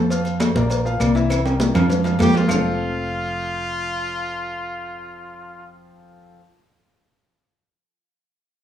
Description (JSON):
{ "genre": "latin, salsa", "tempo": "200 BPM", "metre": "4/4", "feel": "straight", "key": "F major", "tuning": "A4 = 440 Hz", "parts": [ { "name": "clear grand piano", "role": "accompaniment", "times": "0.0-6.4 s", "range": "E3 to F5", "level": "-27 LUFS", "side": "left 3 dB", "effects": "none" }, { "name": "hollow-body short-scale fingered electric bass", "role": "bass", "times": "0.0-6.4 s", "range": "F1 to F2", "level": "-22 LUFS", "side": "right 1 dB", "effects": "none" }, { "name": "congas", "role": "percussion", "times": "0.1-2.6 s", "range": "none", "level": "-22 LUFS", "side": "left 2 dB", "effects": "none" }, { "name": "cowbell and bongos", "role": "percussion", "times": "0.1-2.6 s", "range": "none", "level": "-30 LUFS", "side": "left 6 dB", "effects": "none" }, { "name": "maracas", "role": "percussion", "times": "0.1-2.6 s", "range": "none", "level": "-35 LUFS", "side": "right 4 dB", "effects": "none" }, { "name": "agogo bells and timbales", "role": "percussion", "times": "0.2-2.6 s", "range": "none", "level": "-25 LUFS", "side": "right 6 dB", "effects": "none" }, { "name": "claves", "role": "percussion", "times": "0.4-2.6 s", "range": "none", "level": "-36 LUFS", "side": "left 4 dB", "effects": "none" }, { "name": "clear trumpet", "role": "melody", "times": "2.2-5.7 s", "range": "F4 to G4", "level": "-27 LUFS", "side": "equal", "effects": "none" } ], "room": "light reverb, small room ambience", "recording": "rough home demo mix, small room reverb", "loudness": "-18 LUFS", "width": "side -10 dB against mid", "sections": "0.0-2.5 A section; 2.5-4.9 B section", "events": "drum fill 1.3-2.5", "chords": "0.0 F; 0.7 Bb; 1.3 C7; 1.9 F" }